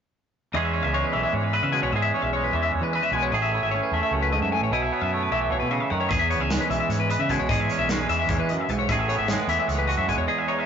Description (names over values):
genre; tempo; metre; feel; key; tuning
math rock and midwest emo; 302 BPM (eighths); 7/8; straight; E major; A4 = 440 Hz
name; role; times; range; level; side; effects
twangy electric guitar; accompaniment; 0.5-10.7 s; E2 to B4; -25 LUFS; right 4 dB; none
twelve-string electric guitar; arpeggios; 0.5-10.7 s; B4 to G#5; -26 LUFS; left 6 dB; spring reverb
growling fingered electric bass; bass; 0.5-10.3 s; G#1 to E3; -28 LUFS; equal; overdrive
modern studio drum kit; drums; 6.1-10.2 s; hi-hat, kick drum, snare drum; -30 LUFS; equal; none
room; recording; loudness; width
moderate studio reverb, RT60 0.6 s; rough rehearsal-room recording, warm saturation, nothing above 7.6 kHz; -21 LUFS; side -7 dB against mid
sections
0.5-10.7 A section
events
none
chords
0.5 E6; 3.3 Amaj9; 4.7 B7sus4; 6.1 E6; 8.9 Amaj9